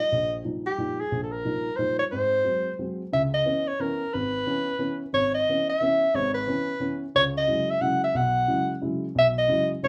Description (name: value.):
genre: jazz.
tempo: 179 BPM.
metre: 3/4.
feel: swing 62% on 8ths.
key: C# dorian from 3.1 s.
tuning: A4 = 439 Hz.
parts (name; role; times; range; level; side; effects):
breathy soprano saxophone; melody; 0.0-9.9 s; G4 to F#5; -26 LUFS; equal; none.
dark baby grand piano; accompaniment; 0.1-9.9 s; G#1 to E4; -31 LUFS; equal; none.
room: wet studio reverb, RT60 0.5 s.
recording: band playing live in one room.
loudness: -25 LUFS.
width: mono.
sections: 0.0-3.1 A section; 3.1-9.9 B section.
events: none.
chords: 0.0 Ebadd9/Bb; 2.1 Ab7; 3.1 C#m7; 7.1 Eadd9.